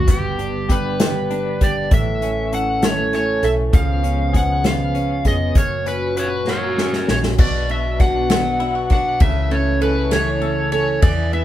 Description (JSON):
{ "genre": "six-eight pop ballad", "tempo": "66 BPM (dotted quarters)", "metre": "6/8", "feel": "straight", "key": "B minor", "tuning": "A4 = 440 Hz", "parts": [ { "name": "overdriven slide guitar", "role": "melody", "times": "0.0-11.4 s", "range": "G4 to F#5", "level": "-22 LUFS", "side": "left 1 dB", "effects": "none" }, { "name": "nylon-string guitar", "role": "accompaniment", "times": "0.0-11.4 s", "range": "F#2 to A4", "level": "-25 LUFS", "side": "right 5 dB", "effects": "none" }, { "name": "warm analog pad", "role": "sustained chords", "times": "0.0-11.4 s", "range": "A#2 to B4", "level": "-26 LUFS", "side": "left 1 dB", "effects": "chorus" }, { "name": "vintage muted fingered electric bass", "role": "bass", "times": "0.0-11.4 s", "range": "E#1 to E2", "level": "-24 LUFS", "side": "equal", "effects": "none" }, { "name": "direct-recorded clean electric guitar", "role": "arpeggios", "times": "0.1-11.4 s", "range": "E3 to A4", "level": "-29 LUFS", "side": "left 5 dB", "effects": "tremolo" }, { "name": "unplugged drum kit", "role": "drums", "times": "0.1-11.4 s", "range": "crash cymbal, hi-hat, kick drum, ride cymbal, snare drum", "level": "-17 LUFS", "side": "equal", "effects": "none" } ], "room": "moderate studio reverb, RT60 0.5 s", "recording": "band playing live in one room", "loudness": "-16 LUFS", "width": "side -12 dB against mid", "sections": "0.0-7.4 A section; 7.4-11.4 B section", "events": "drum fill 6.5-7.4", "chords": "0.1 G; 1.9 A; 3.7 C#7; 5.6 F#; 7.4 Bm; 9.2 A/C#" }